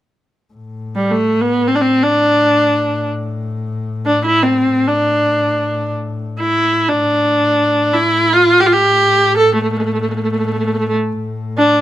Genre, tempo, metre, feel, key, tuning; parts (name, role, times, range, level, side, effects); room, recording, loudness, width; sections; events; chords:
Turkish makam ensemble; free time; A makam ussak; A4 = 441 Hz
warm double bass; drone; 0.5-11.8 s; A2; -24 LUFS; left 3 dB
rich viola; melody; 1.0-11.8 s; G3 to A4; -12 LUFS; equal
moderate small room reverb, RT60 0.6 s; -13 LUFS; side -13 dB against mid
0.5-11.8 A section